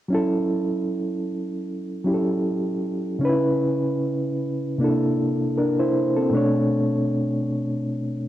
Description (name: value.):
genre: hip hop.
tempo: 77 BPM.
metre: 4/4.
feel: swing 58% on 16ths.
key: unclear.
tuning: A4 = 440 Hz.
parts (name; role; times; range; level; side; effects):
overdriven reed electric piano; accompaniment; 0.1-8.3 s; B2 to C#5; -21 LUFS; equal; fast tremolo, low-pass filter.
room: light reverb, digital ambience.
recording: cassette tape.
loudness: -21 LUFS.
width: side -13 dB against mid.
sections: 0.1-8.3 A section.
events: none.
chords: 0.1 F#m7; 3.2 C#m7; 4.8 C13; 6.3 Bm9.